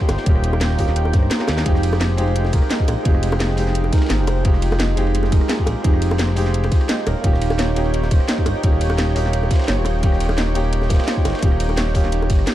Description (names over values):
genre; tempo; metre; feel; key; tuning
liquid drum and bass; 172 BPM; 4/4; straight; unclear; A4 = 438 Hz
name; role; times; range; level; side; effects
dark baby grand piano; accompaniment; 0.0-12.5 s; Ab3 to C5; -24 LUFS; equal; ping-pong delay
lush unison pad; sustained chords; 0.0-12.5 s; Ab3 to G5; -30 LUFS; equal; chorus, sidechain pumping
electronic kick drum; drums; 0.0-12.4 s; none; -17 LUFS; equal; none
smooth gliding synth bass; bass; 0.1-12.5 s; Eb1 to Eb2; -20 LUFS; equal; none
crunchy breakbeat drum kit; drums; 0.1-12.5 s; ride cymbal, snare drum; -36 LUFS; equal; none
garage drum kit; drums; 0.1-12.5 s; hi-hat, ride cymbal, rim click, snare drum; -26 LUFS; equal; none
bongos; percussion; 0.1-12.3 s; none; -27 LUFS; left 1 dB; none
harp-like synth pluck; arpeggios; 1.7-12.5 s; Eb4 to G5; -28 LUFS; right 5 dB; chorus, phaser, ping-pong delay
room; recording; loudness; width
small room ambience; dark, warm production; -16 LUFS; side -13 dB against mid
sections
0.0-12.5 A section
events
kick drops out 1.3-1.7; drum fill 1.4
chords
0.0 Eb7; 1.7 Fm9; 7.1 Eb7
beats
| 0.26 0.61 0.96 1.31 | 1.66 2.01 2.36 2.71 | 3.05 3.40 3.75 4.10 | 4.45 4.80 5.15 5.50 | 5.84 6.19 6.54 6.89 | 7.24 7.59 7.94 8.29 | 8.63 8.98 9.33 9.68 | 10.03 10.38 10.73 11.08 | 11.43 11.78 12.12 12.47